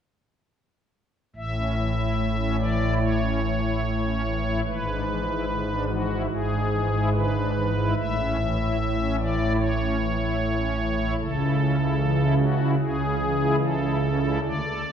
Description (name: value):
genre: classical, chorale-style piece for pipe organ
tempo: 73 BPM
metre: 4/4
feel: rubato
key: A major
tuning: A4 = 440 Hz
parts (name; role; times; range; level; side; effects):
- pipe organ, strings celeste; solo; 1.4-14.9 s; G#1 to E5; -22 LUFS; equal; none
room: wet concert hall reverb, RT60 1.8 s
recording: heard from further back in the room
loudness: -22 LUFS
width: side -8 dB against mid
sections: 1.4-14.9 A section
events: none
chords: 1.4 A; 4.6 E7/G#; 8.0 A; 11.2 A/C#